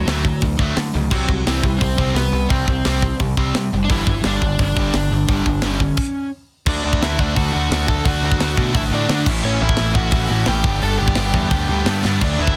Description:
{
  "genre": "punk rock",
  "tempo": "173 BPM",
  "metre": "4/4",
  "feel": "straight",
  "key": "D major",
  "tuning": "A4 = 440 Hz",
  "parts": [
    { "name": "overdriven electric guitar", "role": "melody", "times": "0.0-12.6 s", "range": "E3 to A5", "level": "-26 LUFS", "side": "equal", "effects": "none" },
    { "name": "distorted electric guitar", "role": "riff", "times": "0.0-12.6 s", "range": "G2 to F#4", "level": "-27 LUFS", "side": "equal", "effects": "overdrive" },
    { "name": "sludgy distorted guitar", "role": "riff", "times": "0.0-12.6 s", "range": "G2 to D4", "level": "-26 LUFS", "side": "equal", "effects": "overdrive" },
    { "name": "growling picked electric bass", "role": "bass", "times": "0.0-12.5 s", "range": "F#1 to D3", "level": "-24 LUFS", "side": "equal", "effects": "overdrive" },
    { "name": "tight metal drum kit", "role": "drums", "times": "0.1-12.6 s", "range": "crash cymbal, hi-hat, kick drum, snare drum", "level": "-24 LUFS", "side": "equal", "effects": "none" }
  ],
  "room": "little or no reverb",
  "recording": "dense, heavily limited modern master",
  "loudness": "-19 LUFS",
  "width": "mono",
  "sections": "0.0-6.7 A section; 6.7-12.6 B section",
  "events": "stop 6.0-6.7; drum fill 12.0",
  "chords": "0.0 D; 1.1 C; 3.9 G5; 6.7 D; 9.3 A; 10.7 G"
}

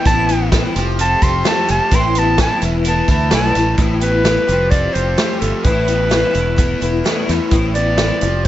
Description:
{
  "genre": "folk rock and heartland rock",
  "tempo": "129 BPM",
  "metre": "4/4",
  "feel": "straight",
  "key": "A minor",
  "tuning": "A4 = 443 Hz",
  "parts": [
    { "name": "mellow clarinet", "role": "melody", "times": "0.0-8.5 s", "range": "A4 to C6", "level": "-18 LUFS", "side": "equal", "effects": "slapback echo" },
    { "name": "picked twelve-string acoustic guitar", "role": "accompaniment", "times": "0.0-8.5 s", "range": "E2 to G4", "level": "-21 LUFS", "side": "left 3 dB", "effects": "ensemble chorus" },
    { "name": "raw garage guitar", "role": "riff", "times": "0.0-8.5 s", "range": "E2 to C4", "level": "-23 LUFS", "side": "equal", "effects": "overdrive" },
    { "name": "fingered electric bass", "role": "bass", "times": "0.1-8.5 s", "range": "E1 to E2", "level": "-19 LUFS", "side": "equal", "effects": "none" },
    { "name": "vintage drum kit", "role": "drums", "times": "0.1-8.5 s", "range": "hi-hat, kick drum, snare drum", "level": "-18 LUFS", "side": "equal", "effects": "none" },
    { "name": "tambourine", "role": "percussion", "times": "0.1-3.7 s", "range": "none", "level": "-35 LUFS", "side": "right 8 dB", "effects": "none" }
  ],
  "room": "light reverb, small room ambience",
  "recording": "nothing above 7.9 kHz",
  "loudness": "-13 LUFS",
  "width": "side -13 dB against mid",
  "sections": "0.0-3.8 A section; 3.8-8.5 B section",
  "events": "clarinet solo 0.0-3.8",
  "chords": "0.1 Amadd9; 0.8 Fadd9; 1.9 Amadd9; 2.6 Esus4; 3.8 Amadd9; 4.5 Fadd9; 5.7 Amadd9; 6.4 Esus4; 7.5 Amadd9"
}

